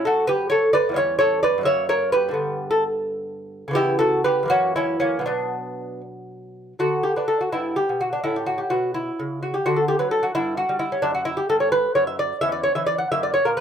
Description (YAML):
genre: classical, baroque-style dance for lute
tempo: 77-89 BPM (dotted quarters)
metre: 6/8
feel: rubato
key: B minor, D major from 6.8 s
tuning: A4 = 441 Hz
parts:
  - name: lute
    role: solo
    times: 0.0-13.6 s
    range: E2 to F#5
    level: -20 LUFS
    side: equal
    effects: none
room: light reverb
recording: close, detailed microphones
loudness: -19 LUFS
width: side -8 dB against mid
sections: 0.0-6.8 A section; 6.8-13.6 A section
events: none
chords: 0.0 F#madd11; 1.7 F#; 2.4 G; 3.8 C#m7b5; 4.5 F#7; 5.3 Bm; 6.8 D5; 7.5 G6; 8.2 A; 9.7 D; 10.4 G5; 11.1 Em13/F#; 12.4 Dmaj9/E; 13.1 F#